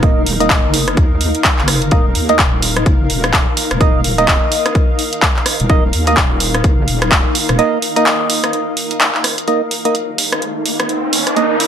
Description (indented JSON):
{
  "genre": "bass house",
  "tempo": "127 BPM",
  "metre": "4/4",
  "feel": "swing 59% on 16ths",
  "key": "unclear",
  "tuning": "A4 = 440 Hz",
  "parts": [
    { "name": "percussive organ stab", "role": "stabs", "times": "0.0-11.6 s", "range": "Bb3 to Eb5", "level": "-18 LUFS", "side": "right 2 dB", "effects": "chorus, phaser, sidechain pumping, ping-pong delay" },
    { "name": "wobble bass", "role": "bass", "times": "0.0-7.6 s", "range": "Eb1 to Eb2", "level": "-19 LUFS", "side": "equal", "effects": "chorus, sidechain pumping" },
    { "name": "electronic kick drum", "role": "drums", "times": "0.0-7.2 s", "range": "none", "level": "-14 LUFS", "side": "equal", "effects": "overdrive" },
    { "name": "house drum kit", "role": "drums", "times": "0.0-11.7 s", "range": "handclaps, hi-hat, rim click", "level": "-16 LUFS", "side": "equal", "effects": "overdrive" },
    { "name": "granular cloud pad", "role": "texture", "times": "0.0-11.7 s", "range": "Eb4 to F5", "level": "-22 LUFS", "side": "left 1 dB", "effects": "built-in reverb, sidechain pumping" },
    { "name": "dark analog pad", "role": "sustained chords", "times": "9.5-11.7 s", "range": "Eb4 to Eb5", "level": "-24 LUFS", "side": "right 2 dB", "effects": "wide subtle chorus, sidechain pumping" },
    { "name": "riser", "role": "sound effects", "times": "10.2-11.7 s", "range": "none", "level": "-21 LUFS", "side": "equal", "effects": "none" }
  ],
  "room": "light reverb",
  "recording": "none",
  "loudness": "-12 LUFS",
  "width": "side -8 dB against mid",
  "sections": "0.0-9.5 A section; 9.5-11.7 B section",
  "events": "filter sweep on synth stab 0.0-9.5; build-up 9.5-11.7; riser 10.2-11.7",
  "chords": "0.0 Eb5"
}